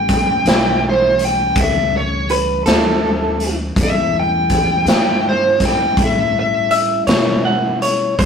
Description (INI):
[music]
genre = slow blues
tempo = 54 BPM (dotted quarters)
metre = 12/8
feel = straight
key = A mixolydian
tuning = A4 = 444 Hz
[part]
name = smooth overdriven lead guitar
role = melody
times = 0.0-6.7 s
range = C5 to G5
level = -16 LUFS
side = equal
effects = none
[part]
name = mellow tonewheel organ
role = sustained chords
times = 0.0-8.3 s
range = E3 to F4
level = -25 LUFS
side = left 1 dB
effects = slow rotary speaker
[part]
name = upright bass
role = bass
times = 0.0-8.3 s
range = A1 to B2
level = -25 LUFS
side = left 1 dB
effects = none
[part]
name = raw garage drum kit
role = drums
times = 0.1-8.3 s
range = hi-hat, kick drum, snare drum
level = -18 LUFS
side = equal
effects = none
[part]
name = electric guitar through a small old amp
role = second line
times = 2.3-8.3 s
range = A4 to F#5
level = -17 LUFS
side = equal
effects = none
[sound]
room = moderate studio reverb, RT60 0.6 s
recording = rough rehearsal-room recording, tube saturation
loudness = -13 LUFS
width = side -6 dB against mid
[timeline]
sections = 0.0-8.3 A section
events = none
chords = 0.0 A9